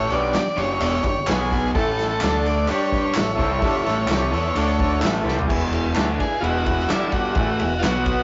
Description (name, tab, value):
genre	garage rock duo or trio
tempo	128 BPM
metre	4/4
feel	straight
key	unclear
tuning	A4 = 440 Hz
part	combo organ	melody	0.0-8.2 s	E4 to D5	-27 LUFS	equal	none
part	combo organ	sustained chords	0.0-8.2 s	B3 to E5	-31 LUFS	equal	none
part	raw garage guitar	riff	0.0-8.2 s	E2 to G4	-27 LUFS	equal	overdrive
part	growling fingered electric bass	bass	0.0-8.2 s	E1 to G2	-28 LUFS	equal	overdrive
part	vintage drum kit	drums	0.1-8.2 s	crash cymbal, hi-hat, kick drum, ride cymbal, snare drum, toms	-28 LUFS	equal	none
part	group handclap	percussion	0.4-7.9 s	none	-34 LUFS	equal	none
room	moderate studio reverb, RT60 0.6 s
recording	rough rehearsal-room recording, warm saturation, nothing above 7.7 kHz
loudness	-21 LUFS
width	mono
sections	0.0-5.5 A section; 5.5-8.2 B section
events	drum fill 5.3; transistor combo organ solo 5.5-8.2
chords	0.1 G5; 1.3 B5; 1.8 A5; 2.2 D5; 2.7 G5; 3.2 A5; 4.6 D5; 5.0 A5; 5.5 E; 6.9 G5; 7.4 E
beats	0.35 0.82 1.29 | 1.76 2.22 2.69 3.16 | 3.63 4.09 4.56 5.03 | 5.50 5.96 6.43 6.90 | 7.37 7.84